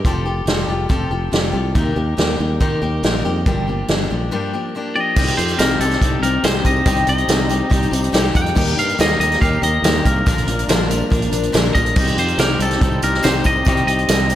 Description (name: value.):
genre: folk rock and heartland rock.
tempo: 141 BPM.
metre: 4/4.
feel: straight.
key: C dorian.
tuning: A4 = 440 Hz.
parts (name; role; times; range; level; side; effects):
picked steel-string acoustic guitar; accompaniment; 0.0-14.4 s; G2 to Bb4; -22 LUFS; left 3 dB; slapback echo.
modern bright fingered electric bass; bass; 0.0-14.4 s; F1 to Eb3; -21 LUFS; equal; none.
vintage drum kit; drums; 0.0-14.4 s; crash cymbal, hi-hat, kick drum, snare drum; -19 LUFS; right 1 dB; none.
twangy electric guitar; melody; 5.0-14.4 s; A4 to G5; -20 LUFS; equal; none.
dark studio string section; sustained chords; 5.2-14.4 s; F3 to Eb4; -28 LUFS; left 1 dB; none.
tambourine; percussion; 5.2-14.4 s; none; -36 LUFS; right 6 dB; none.
room: moderate lush hall reverb, RT60 1.7 s, small room ambience.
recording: big arena sound.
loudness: -15 LUFS.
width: side -12 dB against mid.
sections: 0.0-5.2 A section; 5.2-14.4 B section.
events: break 4.3-5.2.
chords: 0.0 Fadd9; 1.8 Cm7/Eb; 3.5 Gm7; 5.2 Cm; 8.6 Eb; 10.3 Bb; 12.0 Cm.